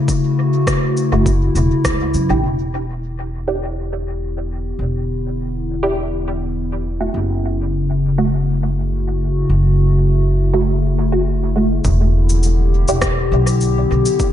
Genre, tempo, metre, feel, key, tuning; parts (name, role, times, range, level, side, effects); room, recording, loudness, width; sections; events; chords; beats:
ambient dub; 102 BPM; 4/4; swing 53% on 16ths; E dorian; A4 = 440 Hz
warbly tape-like pad; sustained chords; 0.0-14.3 s; C#3 to G4; -19 LUFS; left 2 dB; chorus, built-in reverb
electronic kick drum; drums; 0.1-2.0, 11.8-14.3 s; -21 LUFS; equal
electronic shaker and rim click; drums; 0.1-2.3, 11.8-14.3 s; -25 LUFS; equal; low-pass filter on perc, low-pass filter on snare, low-pass filter on room, dub echo
filtered dub chord stab; stabs; 1.1-13.0 s; A3 to G4; -23 LUFS; right 2 dB; phaser, ensemble chorus, dub echo
upright bass; bass; 1.1-14.0 s; E1 to F#2; -18 LUFS; equal
moderate plate reverb, RT60 1.6 s; dreamy mix soaked in reverb, nothing above 10.5 kHz; -15 LUFS; side -11 dB against mid
0.0-2.4 A section; 2.4-11.8 B section; 11.8-14.3 C section
filter sweep on synth stab 0.0-2.4; filter sweep on ambient pad 2.4-11.8
0.0 F#m7; 2.4 Em7; 7.1 F#m7; 11.8 Em7
| 0.08 0.67 1.26 1.85 | 2.44 3.02 3.61 4.20 | 4.79 5.38 5.96 6.55 | 7.14 7.73 8.32 8.91 | 9.49 10.08 10.67 11.26 | 11.85 12.44 13.02 13.61 | 14.20